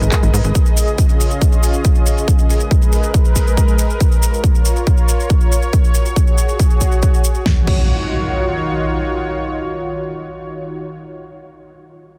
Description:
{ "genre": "uplifting trance", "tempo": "139 BPM", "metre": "4/4", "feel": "straight", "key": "Eb minor", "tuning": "A4 = 444 Hz", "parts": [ { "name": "lush unison pad", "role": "sustained chords", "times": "0.0-10.9 s", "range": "Db3 to Eb5", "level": "-24 LUFS", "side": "equal", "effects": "chorus, sidechain pumping" }, { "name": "tight sequencer bass", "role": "bass", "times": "0.0-0.5 s", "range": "Ab1 to Ab2", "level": "-18 LUFS", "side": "equal", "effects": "sidechain pumping" }, { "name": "big-room dance drum kit", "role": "drums", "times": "0.0-7.8 s", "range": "crash cymbal, handclaps, hi-hat, snare drum", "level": "-31 LUFS", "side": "equal", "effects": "sidechain pumping on hats, low-pass filter on hats, sidechain pumping on cymbals, low-pass filter on cymbals, low-pass filter on snare" }, { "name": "maracas", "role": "percussion", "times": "0.0-7.4 s", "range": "none", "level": "-28 LUFS", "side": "equal", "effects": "none" }, { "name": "electronic kick drum", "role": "drums", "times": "0.1-7.8 s", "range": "none", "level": "-15 LUFS", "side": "equal", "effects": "none" }, { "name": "impact", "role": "sound effects", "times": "7.5-10.9 s", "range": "none", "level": "-26 LUFS", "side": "equal", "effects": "none" } ], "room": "digital ambience", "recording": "dense, heavily limited modern master", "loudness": "-15 LUFS", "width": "mono", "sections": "0.0-7.5 A section; 7.5-10.9 B section", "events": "filter sweep on drum 0.0-7.5", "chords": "0.0 Abmadd9; 0.6 Dbadd9; 2.3 Abmadd9; 4.0 Bbm; 5.7 Gbsus2; 7.5 Ebm7" }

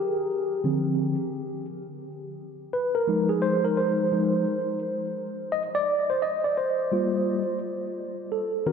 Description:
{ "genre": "hip hop", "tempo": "86 BPM", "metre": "4/4", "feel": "swing 63% on 16ths", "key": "G minor", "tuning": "A4 = 440 Hz", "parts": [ { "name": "mellow tine electric piano", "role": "solo", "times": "0.0-8.7 s", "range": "D3 to Eb5", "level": "-24 LUFS", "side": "equal", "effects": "medium stereo tremolo, ping-pong delay" } ], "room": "wet cathedral reverb, RT60 5.0 s", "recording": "dreamy mix soaked in reverb", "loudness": "-24 LUFS", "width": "side -6 dB against mid", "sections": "0.0-8.7 A section", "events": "tine electric piano solo 0.0-8.7", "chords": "0.3 Dm7; 3.1 Fm7; 5.9 Gm7" }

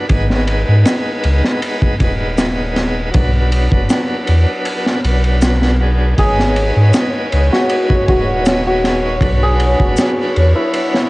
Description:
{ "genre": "trip hop", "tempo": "79 BPM", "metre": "4/4", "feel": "straight", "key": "G# minor", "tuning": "A4 = 440 Hz", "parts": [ { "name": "bright tonewheel organ", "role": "accompaniment", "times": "0.0-11.1 s", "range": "F#3 to B4", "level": "-21 LUFS", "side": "equal", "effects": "overdrive, stopped rotary speaker, tremolo, tape echo" }, { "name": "warm sub bass", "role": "bass", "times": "0.1-10.5 s", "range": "D#1 to G#2", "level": "-14 LUFS", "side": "equal", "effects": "none" }, { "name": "crunchy breakbeat drum kit", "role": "drums", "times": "0.1-11.1 s", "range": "kick drum, ride cymbal, snare drum", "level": "-17 LUFS", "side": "equal", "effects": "cassette tape" }, { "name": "maracas", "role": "percussion", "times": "0.9-10.1 s", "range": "none", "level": "-28 LUFS", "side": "left 3 dB", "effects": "none" }, { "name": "santur", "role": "melody", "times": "6.2-11.1 s", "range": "E4 to G#4", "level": "-18 LUFS", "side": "equal", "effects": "cassette tape, tape echo" }, { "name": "warm studio string section", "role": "sustained chords", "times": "6.2-11.1 s", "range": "C#5", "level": "-22 LUFS", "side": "equal", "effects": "none" } ], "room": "little or no reverb", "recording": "home recording on cassette, nothing above 10.5 kHz", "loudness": "-12 LUFS", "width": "side -21 dB against mid", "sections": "0.0-11.1 A section", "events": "none", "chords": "0.1 G#m; 3.1 Bm; 6.2 G#m; 9.2 Bm" }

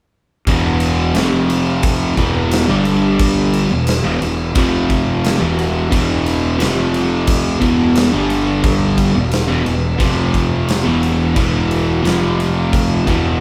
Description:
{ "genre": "stoner and doom metal", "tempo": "88 BPM", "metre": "4/4", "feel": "straight", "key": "E minor", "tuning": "A4 = 438 Hz", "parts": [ { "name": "string machine, full ensemble", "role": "sustained chords", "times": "0.5-13.4 s", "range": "E3 to A4", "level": "-32 LUFS", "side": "equal", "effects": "none" }, { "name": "crunchy overdriven guitar", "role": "riff", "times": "0.5-13.4 s", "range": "E2 to G3", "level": "-21 LUFS", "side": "equal", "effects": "none" }, { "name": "thick fuzz guitar", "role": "riff", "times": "0.5-13.4 s", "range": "E2 to G3", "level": "-21 LUFS", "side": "equal", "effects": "distortion" }, { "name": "fuzz fingered electric bass", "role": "bass", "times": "0.5-13.4 s", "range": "E1 to G1", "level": "-23 LUFS", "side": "equal", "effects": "overdrive" }, { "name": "big rock drum kit", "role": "drums", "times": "0.5-13.2 s", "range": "crash cymbal, kick drum, snare drum", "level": "-22 LUFS", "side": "equal", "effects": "none" } ], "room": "light reverb", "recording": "band playing live in one room", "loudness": "-16 LUFS", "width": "mono", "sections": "0.5-13.4 A section", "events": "none", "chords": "0.5 E5; 1.2 F5; 2.2 E5; 2.7 G5; 3.7 E5; 4.6 F5; 5.4 E5; 6.6 F5; 7.6 E5; 8.1 G5; 9.2 E5; 10.0 F5; 10.9 E5; 12.0 F5" }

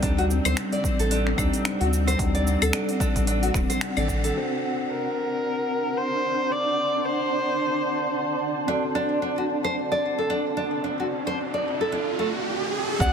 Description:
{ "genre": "organic downtempo", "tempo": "111 BPM", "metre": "4/4", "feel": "swing 58% on 16ths", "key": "unclear", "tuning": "A4 = 440 Hz", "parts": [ { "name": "mellow tine electric piano", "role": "accompaniment", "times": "0.0-13.1 s", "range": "Eb3 to C5", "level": "-31 LUFS", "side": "left 3 dB", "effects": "fast stereo tremolo, sidechain pumping, ping-pong delay" }, { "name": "granular cloud pad", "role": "sustained chords", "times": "0.0-12.5 s", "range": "G3 to A5", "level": "-30 LUFS", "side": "right 1 dB", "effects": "built-in reverb, sidechain pumping" }, { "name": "nylon-string guitar", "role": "arpeggios", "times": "0.0-4.3, 8.7-13.1 s", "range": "A3 to D5", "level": "-27 LUFS", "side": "equal", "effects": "ping-pong delay" }, { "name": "warm sub bass", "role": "bass", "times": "0.0-4.3, 13.0-13.1 s", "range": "D1 to D2", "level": "-25 LUFS", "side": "equal", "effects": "sidechain pumping" }, { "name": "deep house drum kit", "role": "drums", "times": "0.0-4.3, 13.0-13.1 s", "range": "claves, finger snaps, hi-hat, shaker", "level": "-31 LUFS", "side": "equal", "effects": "soft clipping on snare" }, { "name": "electronic kick drum", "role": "drums", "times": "0.0-4.2, 13.0-13.1 s", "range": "none", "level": "-26 LUFS", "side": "equal", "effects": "none" }, { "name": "warm kamancheh", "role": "melody", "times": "4.9-8.4, 13.0-13.1 s", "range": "Bb4 to F#5", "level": "-27 LUFS", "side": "equal", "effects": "ping-pong delay" }, { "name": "riser", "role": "sound effects", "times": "9.8-13.0 s", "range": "none", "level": "-30 LUFS", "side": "right 2 dB", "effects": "none" } ], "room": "moderate huge ambient reverb, RT60 9.5 s", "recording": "dense, heavily limited modern master", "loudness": "-22 LUFS", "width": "side -7 dB against mid", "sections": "0.0-4.4 A section; 4.4-13.0 B section", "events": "band accent 3.8; filter sweep on ambient pad 4.4-13.0; riser 9.8-13.0", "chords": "0.0 Cmadd9; 4.4 D7" }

